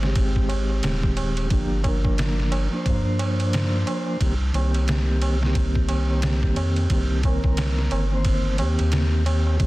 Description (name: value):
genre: trip hop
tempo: 89 BPM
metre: 4/4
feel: swing 60% on 16ths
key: C minor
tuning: A4 = 440 Hz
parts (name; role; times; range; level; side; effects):
- mellow tonewheel organ; accompaniment; 0.0-9.7 s; Eb3 to C5; -26 LUFS; equal; slow rotary speaker, tremolo, low-pass filter, tape echo
- round analog bass; bass; 0.0-9.7 s; Eb1 to G2; -22 LUFS; equal; none
- trip hop sampler-style drum kit; drums; 0.0-9.7 s; kick drum, ride cymbal, snare drum; -25 LUFS; equal; none
- tabla; percussion; 0.0-9.7 s; none; -35 LUFS; right 4 dB; none
room: little or no reverb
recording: dense, heavily limited modern master, vinyl crackle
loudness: -20 LUFS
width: side -19 dB against mid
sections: 0.0-9.7 A section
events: filter sweep on tonewheel organ 0.0-9.7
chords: 0.0 Abmaj7; 1.5 Gm7; 4.2 Cm7